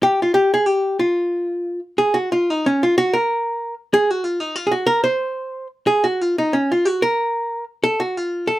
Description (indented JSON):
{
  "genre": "musette",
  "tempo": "185 BPM",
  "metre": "3/4",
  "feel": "swing 53% on 8ths",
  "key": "Bb minor",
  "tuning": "A4 = 439 Hz",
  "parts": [
    { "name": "archtop guitar, miked and amplified", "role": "solo", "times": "0.0-8.6 s", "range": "Db4 to C5", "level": "-17 LUFS", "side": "equal", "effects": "none" }
  ],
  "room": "light reverb",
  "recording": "none",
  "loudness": "-17 LUFS",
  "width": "side -16 dB against mid",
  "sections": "0.0-2.0 A section; 2.0-8.6 B section",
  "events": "none",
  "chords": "none"
}